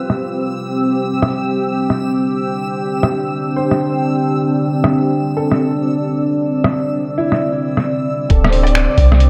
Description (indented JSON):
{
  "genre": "future garage",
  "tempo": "133 BPM",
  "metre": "4/4",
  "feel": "swing 64% on 16ths",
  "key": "unclear",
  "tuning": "A4 = 440 Hz",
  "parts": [
    { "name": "clear upright piano", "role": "accompaniment", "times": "0.0-9.3 s", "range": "E4 to D5", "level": "-28 LUFS", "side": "equal", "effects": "vintage 12-bit sampler grit, sidechain pumping, tape echo" },
    { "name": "deep dark ambient pad", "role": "sustained chords", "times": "0.0-9.3 s", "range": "C4 to G5", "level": "-19 LUFS", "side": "equal", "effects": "chorus, built-in reverb, sidechain pumping" },
    { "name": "backwards swelling texture", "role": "texture", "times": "0.0-8.3 s", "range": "E6", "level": "-33 LUFS", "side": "equal", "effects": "built-in reverb, subtle chorus" },
    { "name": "lo-fi sampler-style drum kit", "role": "drums", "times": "0.1-9.3 s", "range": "finger snaps, hi-hat, rim click", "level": "-21 LUFS", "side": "equal", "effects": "low-pass filter on snare, low-pass filter on hats" },
    { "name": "soft 808-style bass", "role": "bass", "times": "8.3-9.3 s", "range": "D1 to C2", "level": "-14 LUFS", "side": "equal", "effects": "sidechain pumping" },
    { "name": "electronic kick drum", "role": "drums", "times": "8.3-9.1 s", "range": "none", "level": "-16 LUFS", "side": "equal", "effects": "none" }
  ],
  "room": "wet lush hall reverb, RT60 2.0 s",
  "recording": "dreamy mix soaked in reverb",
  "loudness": "-17 LUFS",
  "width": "mono",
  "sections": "0.0-8.3 A section",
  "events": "none",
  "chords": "0.0 Dm7 (rootless); 1.1 Gsus4; 8.3 Dm7"
}